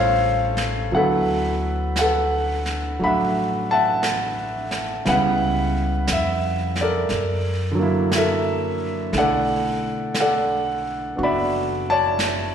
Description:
jazz ballad; 59 BPM; 4/4; swing 66% on 8ths; D major; A4 = 440 Hz
warm concert grand piano; accompaniment; 0.0-12.5 s; C#3 to B5; -20 LUFS; equal; slapback echo
upright bass; bass; 0.0-12.5 s; F#1 to F#2; -28 LUFS; left 1 dB
jazz brush drum kit; drums; 0.6-12.5 s; brushed snare drum, hi-hat, snare drum; -29 LUFS; equal; slapback echo
light reverb, small room ambience; live gig heard through the venue's PA, recital hall reverb; -19 LUFS; side -8 dB against mid
0.9-12.5 A section
0.0 A7alt; 0.9 D69; 5.1 C#m7b5; 7.1 F#7alt; 9.1 Bm11

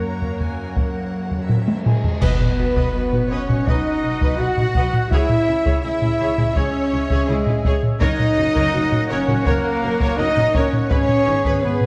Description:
cinematic, epic orchestral film score; 83 BPM; 4/4; straight; A4 = 440 Hz
rich symphonic violin section; melody; 0.0-11.9 s; G#4 to F#5; -36 LUFS; equal
clear chamber violin section; second line; 0.0-11.9 s; G#4 to A#5; -34 LUFS; equal
clear symphonic viola section; accompaniment; 0.0-11.9 s; C#4 to D#5; -32 LUFS; equal
warm French horn section; sustained chords; 0.0-11.9 s; G#3 to F#4; -26 LUFS; equal
warm woodwind section; sustained chords; 0.0-11.9 s; G#3 to F#5; -34 LUFS; equal
clear symphonic cello section; bass; 0.0-11.9 s; G#3 to F#4; -31 LUFS; equal
rich studio double bass section; bass; 0.0-11.9 s; F#1 to F#2; -29 LUFS; equal
solo taiko drums; drums; 0.2-11.9 s; -23 LUFS; equal
dark trumpet section; stabs; 1.9-11.9 s; G#4 to F#5; -29 LUFS; equal
clash cymbals and concert bass drum; percussion; 2.2-3.6 s; -30 LUFS; equal
impact; sound effects; 2.4-5.1 s; barely audible
wet scoring stage reverb, RT60 1.5 s; dark, warm production; -19 LUFS; mono
0.0-2.2 A section; 2.2-11.9 B section
drum fill 1.5-2.2; band accent 2.2-2.9; impact 2.2-5.1
0.0 F#; 2.2 B; 5.1 C#m; 8.0 F#; 10.9 G#m

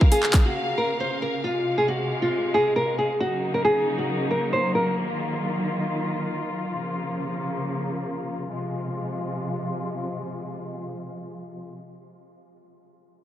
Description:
hip hop; 136 BPM; 4/4; half-time; F phrygian; A4 = 443 Hz
nylon-string guitar; melody; 0.0-5.0 s; F4 to C5; -24 LUFS; equal; low-pass filter, tape echo
clear symphonic string section; sustained chords; 0.0-11.7 s; C3 to F5; -28 LUFS; left 1 dB; low-pass filter
light reverb, small room ambience; -23 LUFS; side -12 dB against mid
0.0-8.5 A section; 8.5-12.0 B section
filter sweep 0.0-8.5
0.0 Bbm; 1.4 Fm; 3.2 Gb6; 5.0 Ebmadd9; 6.7 Bbm; 8.5 Fm

